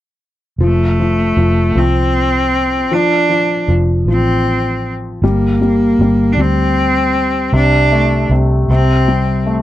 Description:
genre	pop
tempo	52 BPM (dotted quarters)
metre	6/8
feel	straight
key	F major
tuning	A4 = 439 Hz
part	clear cello	melody	0.6-9.5 s	A3 to D4	-15 LUFS	equal	none
part	felt-muted upright piano	accompaniment	0.6-9.6 s	C3 to A3	-17 LUFS	left 3 dB	none
part	vintage muted fingered electric bass	bass	0.6-9.6 s	F1 to D2	-15 LUFS	right 1 dB	none
room	light reverb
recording	dry, close 1970s-style studio recording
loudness	-11 LUFS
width	side -14 dB against mid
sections	0.6-9.6 A section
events	none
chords	0.6 F; 2.9 Dm7/F; 5.2 Gm; 7.5 Amadd11/C; 8.7 C5

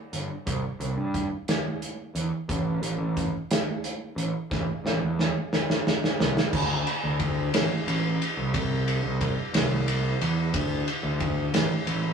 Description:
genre	quiet-loud alternative rock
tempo	60 BPM (dotted quarters)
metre	6/8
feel	straight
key	unclear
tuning	A4 = 440 Hz
part	fuzz picked electric bass	bass	0.1-12.1 s	G1 to G2	-27 LUFS	right 1 dB	overdrive
part	loose indie drum kit	drums	0.1-12.0 s	crash cymbal, hi-hat, kick drum, ride cymbal, snare drum	-26 LUFS	equal	none
room	moderate studio reverb, RT60 0.6 s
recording	rough rehearsal-room recording, small room ambience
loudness	-24 LUFS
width	side -6 dB against mid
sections	0.0-6.5 A section; 6.5-12.1 B section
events	drum fill 4.5-6.5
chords	none

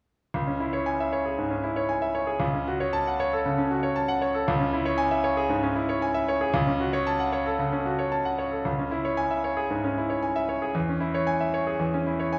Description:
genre	classical, virtuoso piano study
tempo	115 BPM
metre	4/4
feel	rubato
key	C# minor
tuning	A4 = 440 Hz
part	bright grand piano	solo	0.3-12.4 s	C#2 to A5	-26 LUFS	equal	none
room	wet recital hall reverb, RT60 1.6 s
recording	heard from further back in the room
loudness	-26 LUFS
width	mono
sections	0.3-8.7 A section; 8.7-12.4 B section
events	none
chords	0.3 C#m; 2.4 F#m/C#; 4.5 C#m; 6.5 F#m/C#; 8.7 C#m; 10.8 C#m/E

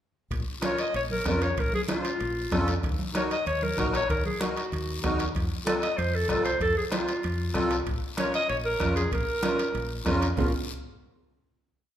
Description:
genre	latin, cumbia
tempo	191 BPM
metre	4/4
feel	straight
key	Bb harmonic minor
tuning	A4 = 440 Hz
part	fingered electric bass	bass	0.3-10.5 s	Bb1 to F2	-32 LUFS	equal	none
part	bombo	percussion	0.3-10.4 s	none	-32 LUFS	left 1 dB	none
part	congas	percussion	0.3-10.4 s	none	-36 LUFS	right 1 dB	none
part	guiro	percussion	0.3-10.5 s	none	-41 LUFS	left 5 dB	none
part	timbales	percussion	0.3-10.5 s	none	-38 LUFS	right 4 dB	none
part	clear clarinet	melody	0.6-10.0 s	F4 to Eb5	-28 LUFS	equal	none
part	accordion	accompaniment	0.6-10.5 s	C4 to C5	-31 LUFS	equal	light tremolo tuning
room	wet large studio reverb, RT60 1.2 s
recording	minimal, uncompressed stereo recording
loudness	-25 LUFS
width	side -10 dB against mid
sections	0.3-10.4 A section; 10.4-11.6 final chord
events	none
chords	0.3 Bbm; 2.8 Ebm; 5.4 F; 7.9 Bbm

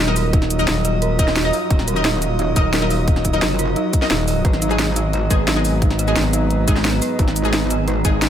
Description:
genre	dark technical drum and bass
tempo	175 BPM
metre	4/4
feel	straight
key	Eb minor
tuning	A4 = 442 Hz
part	deep dark ambient pad	sustained chords	0.0-8.3 s	Gb3 to Bb5	-26 LUFS	right 2 dB	chorus, built-in reverb, sidechain pumping
part	dark detuned synth bell	arpeggios	0.0-8.1 s	Eb4 to Eb5	-27 LUFS	right 1 dB	chorus, sidechain pumping, dub echo
part	growling FM bass	bass	0.0-8.3 s	Eb1 to Ab1	-20 LUFS	equal	none
part	airy breathy pad	texture	0.0-8.3 s	Gb3 to Eb5	-26 LUFS	equal	chorus, sidechain pumping
part	orchestra-hit-like synth stab	stabs	0.1-8.2 s	Ab3 to Eb5	-25 LUFS	left 2 dB	built-in reverb, dub echo
part	drum and bass drum kit	drums	0.1-8.3 s	hi-hat, shaker, snare drum	-22 LUFS	equal	overdrive
part	electronic kick drum	drums	0.3-8.1 s	none	-17 LUFS	equal	overdrive
part	metallic wobble bass	bass	1.7-8.0 s	Eb1 to Ab1	-22 LUFS	equal	chorus, tube saturation
room	light reverb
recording	none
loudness	-16 LUFS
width	side -10 dB against mid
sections	0.0-8.3 A section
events	none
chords	0.0 Ebmadd9; 4.4 Abmadd9

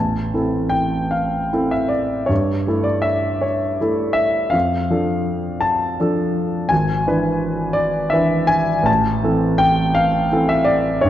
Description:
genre	classical, romantic nocturne for solo piano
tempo	50-58 BPM (dotted quarters)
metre	12/8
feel	rubato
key	A minor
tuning	A4 = 441 Hz
part	warm concert grand piano	solo	0.0-11.1 s	G#1 to A5	-16 LUFS	equal	none
room	moderate concert hall reverb, RT60 2.1 s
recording	worn, warbling old tape, cassette tape, warbly pitch drift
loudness	-16 LUFS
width	side -12 dB against mid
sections	0.0-11.1 A section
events	none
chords	0.0 Am; 2.3 A5/G; 4.5 Dm/F; 6.7 E7/G#; 8.9 Am

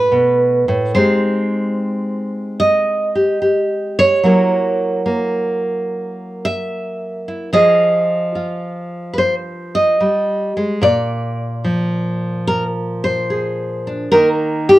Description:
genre	solo jazz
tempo	73 BPM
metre	4/4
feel	swing 68% on 8ths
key	unclear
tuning	A4 = 439 Hz
part	nylon-string guitar	solo	0.0-14.8 s	A2 to Fb5	-14 LUFS	right 1 dB	none
room	moderate studio reverb, RT60 0.5 s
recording	none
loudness	-15 LUFS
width	side -16 dB against mid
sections	0.0-14.8 A section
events	none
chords	0.0 A69; 0.9 Abmaj7; 4.2 Gb7; 7.5 Fm7; 10.8 Bb7; 14.1 Eb

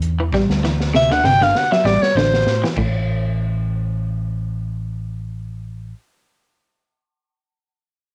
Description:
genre	afrobeat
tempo	98 BPM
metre	4/4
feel	swing 55% on 16ths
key	A dorian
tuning	A4 = 440 Hz
part	fingered electric bass	bass	0.0-5.9 s	G1 to A2	-24 LUFS	equal	none
part	crunchy breakbeat drum kit	drums	0.0-2.9 s	crash cymbal, hi-hat, kick drum, snare drum	-27 LUFS	equal	none
part	electric guitar at the edge of break-up	arpeggios	0.2-3.0 s	A2 to G3	-23 LUFS	equal	cassette tape
part	clear alto saxophone	melody	1.0-2.6 s	C5 to G5	-18 LUFS	equal	plate reverb
room	moderate studio reverb, RT60 0.6 s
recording	home recording on cassette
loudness	-18 LUFS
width	mono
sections	0.0-2.8 A section; 2.8-5.2 B section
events	alto saxophone solo 0.0-2.8; drum fill 0.3-2.8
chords	0.0 A7sus4; 2.8 N.C.

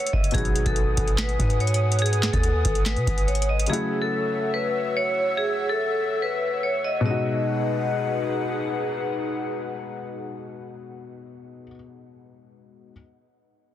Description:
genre	hip hop, trap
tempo	143 BPM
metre	4/4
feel	half-time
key	G# phrygian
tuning	A4 = 440 Hz
part	vibraphone with hard mallets	melody	0.0-8.3 s	G#4 to D#5	-27 LUFS	equal	low-pass filter
part	dark baby grand piano	accompaniment	0.0-12.9 s	B2 to F#4	-30 LUFS	left 3 dB	low-pass filter
part	airy breathy pad	sustained chords	0.0-11.2 s	D#4 to E6	-30 LUFS	left 1 dB	chorus
part	booming analog drum machine	drums	0.0-3.8 s	handclaps, hi-hat, kick drum, snare drum	-25 LUFS	equal	none
part	warm 808-style bass	bass	0.1-3.7 s	F#1 to B2	-24 LUFS	equal	none
room	little or no reverb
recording	dense, heavily limited modern master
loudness	-22 LUFS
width	side -11 dB against mid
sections	0.3-7.1 A section; 7.1-10.4 B section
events	none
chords	0.3 G#m7; 3.7 F#m7; 7.1 G#m7

